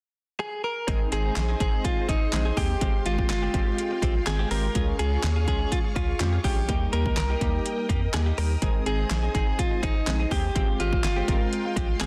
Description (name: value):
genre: dance-pop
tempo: 124 BPM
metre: 4/4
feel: straight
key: Ab major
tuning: A4 = 444 Hz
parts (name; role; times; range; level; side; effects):
- direct-recorded clean electric guitar; melody; 0.4-12.1 s; Eb4 to Bb4; -32 LUFS; equal; delay
- funky polysynth comp; accompaniment; 0.9-12.1 s; G3 to Bb4; -37 LUFS; equal; chorus, sidechain pumping
- string machine, violas; sustained chords; 0.9-12.1 s; Ab3 to Eb6; -40 LUFS; equal; ensemble chorus, sidechain pumping
- direct-recorded clean electric guitar; riff; 0.9-12.0 s; Ab3 to Ab4; -39 LUFS; equal; subtle chorus
- round analog bass; bass; 0.9-12.1 s; G1 to F2; -29 LUFS; equal; sidechain pumping
- pop drum kit; drums; 0.9-12.1 s; handclaps, hi-hat, kick drum, snare drum; -30 LUFS; equal; none
room: little or no reverb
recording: dense, heavily limited modern master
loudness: -25 LUFS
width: mono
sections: 0.9-12.1 A section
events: none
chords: 0.0 N.C.; 0.9 Ab; 2.8 Fmadd9; 4.7 Db; 6.7 Eb; 8.6 Ab; 10.6 Fmadd9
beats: 0.39 | 0.88 1.36 1.85 2.33 | 2.81 3.30 3.78 4.26 | 4.75 5.23 5.72 6.20 | 6.68 7.17 7.65 8.14 | 8.62 9.10 9.59 10.07 | 10.56 11.04 11.52 12.01